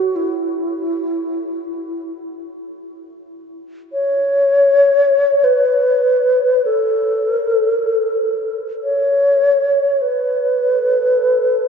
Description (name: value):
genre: world meditative, free-time meditation music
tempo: free time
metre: none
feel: none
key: A major pentatonic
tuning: A4 = 444 Hz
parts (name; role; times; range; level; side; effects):
- mellow hollow wooden-headed alto flute; melody; 0.0-11.7 s; E4 to C#5; -14 LUFS; equal; tape echo
- glass harmonica; texture; 10.6-11.7 s; A4; -24 LUFS; equal; stereo widening
room: wet cathedral reverb, RT60 6.6 s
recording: in a vast, echoing space, nothing above 8.0 kHz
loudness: -14 LUFS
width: side -6 dB against mid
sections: 0.0-11.7 A section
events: none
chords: none